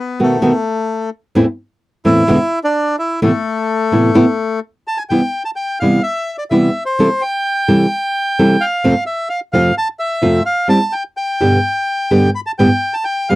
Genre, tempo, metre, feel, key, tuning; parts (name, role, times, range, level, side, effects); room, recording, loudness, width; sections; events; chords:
tango; 129 BPM; 4/4; rubato; A harmonic minor, C major from 5.1 s; A4 = 445 Hz
bandoneon; melody; 0.0-13.4 s; A3 to B5; -17 LUFS; left 1 dB
nylon-string guitar; accompaniment; 0.2-13.4 s; E2 to A4; -12 LUFS; equal
light reverb; dry, close 1970s-style studio recording; -13 LUFS; side -18 dB against mid
0.0-5.1 A section; 5.1-13.4 B section
0.0 B7; 1.4 Am/E; 2.3 E7; 3.2 Amadd9; 5.1 Cmaj7; 7.0 Am7/C; 8.8 F; 10.7 N.C.; 11.6 G; 12.6 Gsus2